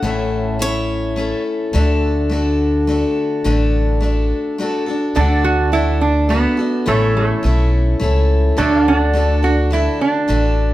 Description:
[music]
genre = country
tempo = 105 BPM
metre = 3/4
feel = straight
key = D major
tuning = A4 = 440 Hz
[part]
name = picked acoustic archtop guitar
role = melody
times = 0.0-1.4 s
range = C#5 to F#5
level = -25 LUFS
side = equal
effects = none
[part]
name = picked steel-string acoustic guitar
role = accompaniment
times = 0.0-10.7 s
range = A2 to A4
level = -19 LUFS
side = left 2 dB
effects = none
[part]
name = upright bass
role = bass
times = 0.0-10.7 s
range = A1 to D2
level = -17 LUFS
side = equal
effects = none
[part]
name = lap resonator guitar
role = second line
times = 5.2-10.7 s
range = A3 to F#4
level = -18 LUFS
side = right 3 dB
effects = none
[part]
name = pedal steel guitar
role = sustained chords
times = 5.2-10.7 s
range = A4 to F#5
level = -24 LUFS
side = right 1 dB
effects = none
[sound]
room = light reverb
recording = none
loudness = -14 LUFS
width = side -15 dB against mid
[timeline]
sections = 0.0-5.2 A section; 5.2-10.7 B section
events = resonator guitar played with a steel bar solo 5.2-10.7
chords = 0.0 A; 1.7 D; 6.9 A; 8.6 D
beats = | 0.03 0.60 1.17 | 1.74 2.31 2.88 | 3.45 4.02 4.59 | 5.16 5.73 6.30 | 6.87 7.44 8.01 | 8.58 9.15 9.72 | 10.29

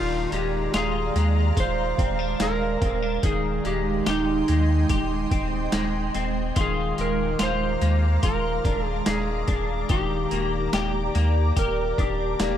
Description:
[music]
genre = dream pop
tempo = 72 BPM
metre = 4/4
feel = straight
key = unclear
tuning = A4 = 440 Hz
[part]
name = electric slide guitar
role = melody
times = 0.0-12.6 s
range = Eb4 to C5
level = -28 LUFS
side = right 2 dB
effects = dub echo
[part]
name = ethereal airy pad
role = sustained chords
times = 0.0-12.6 s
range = Ab3 to D6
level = -29 LUFS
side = right 3 dB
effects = ensemble chorus, built-in reverb
[part]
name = electric guitar at the edge of break-up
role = arpeggios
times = 0.0-12.6 s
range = Eb3 to G4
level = -30 LUFS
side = left 6 dB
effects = ensemble chorus, dub echo
[part]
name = sub bass with octave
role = bass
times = 0.0-12.6 s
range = Eb1 to Eb2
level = -26 LUFS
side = equal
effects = none
[part]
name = boom bap sampler-style drum kit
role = drums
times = 0.3-12.6 s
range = hi-hat, kick drum, snare drum, tambourine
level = -27 LUFS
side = equal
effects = overdrive, dub echo
[sound]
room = light reverb, digital ambience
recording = echo-heavy mix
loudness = -21 LUFS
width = side -10 dB against mid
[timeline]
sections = 0.0-12.6 A section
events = none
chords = 0.0 Bb7/Eb; 3.2 Abmaj7/Eb; 6.6 Bb7/Eb; 9.9 Ebmaj7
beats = 0.73 1.56 2.40 | 3.23 4.07 4.90 5.73 | 6.57 7.40 8.23 9.06 | 9.90 10.73 11.56 12.40

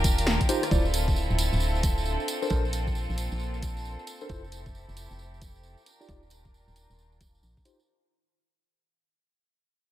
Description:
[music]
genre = UK garage, two-step garage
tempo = 134 BPM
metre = 4/4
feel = swing 63% on 16ths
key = unclear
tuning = A4 = 439 Hz
[part]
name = clear studio violin section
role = sustained chords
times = 0.0-7.9 s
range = C4 to Bb4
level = -34 LUFS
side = right 1 dB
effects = sidechain pumping, low-pass filter
[part]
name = organ-like FM bass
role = bass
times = 0.0-7.6 s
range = D1 to Bb1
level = -30 LUFS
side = equal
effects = none
[part]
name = electronic kick drum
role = drums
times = 0.0-7.6 s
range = none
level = -27 LUFS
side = equal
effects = overdrive
[part]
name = punchy analog drum machine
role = drums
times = 0.0-7.8 s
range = hi-hat, rim click, snare drum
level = -31 LUFS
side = equal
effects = none
[part]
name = tambourine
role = percussion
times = 0.0-7.9 s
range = none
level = -38 LUFS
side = right 4 dB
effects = none
[part]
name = warbly tape-like pad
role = texture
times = 0.0-7.9 s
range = Eb3 to C6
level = -41 LUFS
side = equal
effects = chorus, built-in reverb, phaser, sidechain pumping
[part]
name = tine electric piano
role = stabs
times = 0.5-7.8 s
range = D4 to D5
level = -32 LUFS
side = equal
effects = fast stereo tremolo, low-pass filter, diffuse ambient delay
[sound]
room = light reverb, digital ambience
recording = none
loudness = -25 LUFS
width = side -13 dB against mid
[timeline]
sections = 0.0-7.9 A section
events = fade-out on ambient pad 0.0-7.9; fade-out 0.0-7.9; filter sweep on tine electric piano 0.0-7.9; filter sweep on violin section 0.0-7.9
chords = 0.0 Ebmaj9; 0.7 Dm9; 2.3 Bbmaj9; 4.3 Fmaj7; 5.9 Ebmaj9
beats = 0.27 | 0.71 1.16 1.61 2.06 | 2.50 2.95 3.40 3.85 | 4.30 4.74 5.19 5.64 | 6.09 6.54 6.98 7.43

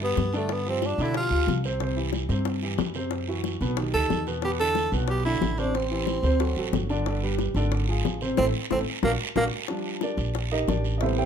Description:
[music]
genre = Afro-Cuban jazz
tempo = 183 BPM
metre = 4/4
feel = straight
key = G major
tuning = A4 = 441 Hz
[part]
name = breathy tenor saxophone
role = melody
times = 0.0-1.6, 3.9-9.4 s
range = A3 to A4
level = -27 LUFS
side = right 2 dB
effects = none
[part]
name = warm baby grand piano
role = accompaniment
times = 0.0-11.3 s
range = B2 to G5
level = -29 LUFS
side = right 1 dB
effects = none
[part]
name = upright bass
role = bass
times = 0.0-11.3 s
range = G1 to B2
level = -28 LUFS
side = equal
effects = none
[part]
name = bongos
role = percussion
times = 0.0-11.2 s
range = none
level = -32 LUFS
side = left 8 dB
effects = none
[part]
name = guiro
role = percussion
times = 0.2-11.3 s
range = none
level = -37 LUFS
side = right 7 dB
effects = none
[sound]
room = light reverb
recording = none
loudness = -24 LUFS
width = side -8 dB against mid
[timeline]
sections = 0.0-9.7 A section; 9.7-11.3 B section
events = band accent 8.4-9.7; drum fill 9.2-9.7; grand piano solo 9.7-11.3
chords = 0.5 G7; 1.8 C; 3.1 Cmaj7#11; 3.8 B7alt; 4.4 E5; 5.7 Am7; 6.4 D7; 7.1 G; 7.7 Fm6/Ab; 8.4 Am; 9.0 Bbaug; 9.7 Ebmaj9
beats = 0.17 | 0.50 0.82 1.15 1.48 | 1.81 2.14 2.46 2.79 | 3.12 3.45 3.78 4.11 | 4.43 4.76 5.09 5.42 | 5.75 6.08 6.40 6.73 | 7.06 7.39 7.72 8.05 | 8.38 8.70 9.03 9.36 | 9.69 10.02 10.35 10.68 | 11.01

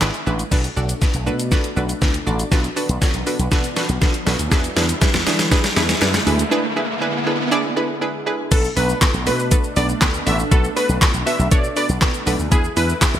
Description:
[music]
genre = dance-pop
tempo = 120 BPM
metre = 4/4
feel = straight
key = B dorian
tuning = A4 = 442 Hz
[part]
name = analog pluck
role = accompaniment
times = 0.0-13.2 s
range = B3 to D5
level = -23 LUFS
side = right 2 dB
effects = chorus, sidechain pumping
[part]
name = lush unison pad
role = sustained chords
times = 0.0-13.2 s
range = B2 to E4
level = -30 LUFS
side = equal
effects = chorus, phaser, sidechain pumping
[part]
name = slap bass with an envelope filter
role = bass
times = 0.0-13.2 s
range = G#1 to E3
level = -22 LUFS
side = equal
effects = sidechain pumping
[part]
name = pop drum kit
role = drums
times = 0.0-13.2 s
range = crash cymbal, handclaps, hi-hat, kick drum, shaker, snare drum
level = -18 LUFS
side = equal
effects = overdrive, gated reverb
[part]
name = group handclap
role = percussion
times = 0.0-0.1, 5.0-6.1 s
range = none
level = barely audible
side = none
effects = none
[part]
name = riser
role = sound effects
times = 2.9-7.5 s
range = none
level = -27 LUFS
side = right 1 dB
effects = none
[part]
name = plucky unison lead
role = melody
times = 8.5-13.0 s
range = G#4 to E5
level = -23 LUFS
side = left 1 dB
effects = sidechain pumping, ping-pong delay
[sound]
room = light reverb, digital ambience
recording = bright 1980s-style digital production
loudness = -16 LUFS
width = side -10 dB against mid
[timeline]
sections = 0.5-8.5 A section; 8.5-13.2 B section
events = break 0.0-0.5, 6.5-8.5; build-up 0.5-8.5; drum fill 0.5-6.5; riser 2.9-8.5; drop 8.5-13.2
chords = 0.0 E7; 0.5 Bm7; 4.5 E7; 8.5 Bm7; 12.5 E7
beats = 0.02 | 0.52 1.02 1.52 2.02 | 2.52 3.02 3.52 4.02 | 4.52 5.02 5.52 6.02 | 6.52 7.02 7.52 8.02 | 8.52 9.02 9.52 10.02 | 10.52 11.02 11.52 12.02 | 12.52 13.02

